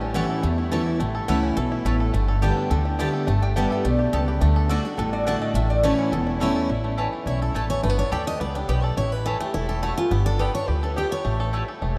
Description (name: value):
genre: bluegrass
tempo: 211 BPM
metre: 4/4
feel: straight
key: A mixolydian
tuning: A4 = 440 Hz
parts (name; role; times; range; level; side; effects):
- bluegrass banjo; melody; 0.0-12.0 s; E3 to A4; -33 LUFS; equal; none
- picked steel-string acoustic guitar; accompaniment; 0.0-11.5 s; E2 to D#5; -28 LUFS; equal; none
- upright bass; bass; 0.0-12.0 s; E1 to E2; -26 LUFS; equal; none
- mandolin; stabs; 0.1-11.6 s; A3 to A5; -36 LUFS; equal; none
- lap resonator guitar; melody; 0.2-6.2 s; A4 to A5; -33 LUFS; equal; none
room: moderate huge ambient reverb, RT60 8.3 s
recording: in a vast, echoing space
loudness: -23 LUFS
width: mono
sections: 0.0-6.7 A section; 6.7-12.0 A section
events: resonator guitar played with a steel bar solo 0.0-6.7; steel-string acoustic guitar solo 6.7-12.0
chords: 0.0 A; 2.1 Gadd9; 4.4 D; 5.6 A; 7.8 G; 9.0 A; 10.1 G; 11.3 A